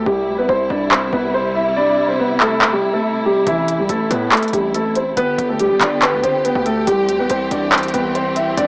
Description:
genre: hip hop, trap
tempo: 141 BPM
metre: 4/4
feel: half-time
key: unclear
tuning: A4 = 440 Hz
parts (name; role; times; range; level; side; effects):
- dark concert grand piano; melody; 0.0-8.7 s; E3 to E5; -20 LUFS; equal; low-pass filter, cassette tape, analog delay
- rich studio string section; sustained chords; 0.0-8.7 s; C3 to G4; -26 LUFS; equal; cassette tape
- distorted 808-style bass; bass; 0.0-8.7 s; G1 to A2; -28 LUFS; equal; distortion
- trap drum kit; drums; 0.9-8.7 s; handclaps, hi-hat; -19 LUFS; equal; vintage 12-bit sampler grit, cassette tape
room: moderate spring reverb, RT60 1.1 s, small room ambience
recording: home recording on cassette, small speaker sound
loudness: -17 LUFS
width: mono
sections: 0.0-8.7 A section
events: break 0.0-3.5; kick muted 1.8-3.5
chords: 0.1 C; 3.5 Am; 5.2 G; 6.9 C

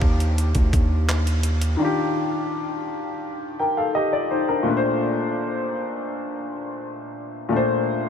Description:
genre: contemporary R&B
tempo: 84 BPM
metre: 4/4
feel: straight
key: Bb major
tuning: A4 = 440 Hz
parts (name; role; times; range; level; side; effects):
- warm grand piano; accompaniment; 0.0-8.1 s; Bb2 to G5; -23 LUFS; left 2 dB; lush chorus
- long sustained 808-style bass; bass; 0.0-1.8 s; D2 to Eb2; -20 LUFS; equal; none
- detuned 8-bit digital drum machine; drums; 0.0-1.8 s; handclaps, hi-hat, kick drum; -25 LUFS; equal; none
- soft round pluck; texture; 0.0-1.5 s; C5 to A5; -46 LUFS; right 2 dB; none
room: moderate huge ambient reverb, RT60 7.1 s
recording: dreamy mix soaked in reverb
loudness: -20 LUFS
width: side -8 dB against mid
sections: 0.0-4.7 A section; 4.7-8.1 A section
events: break 1.8-4.7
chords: 0.0 Ebmaj9; 4.7 Bbmaj9

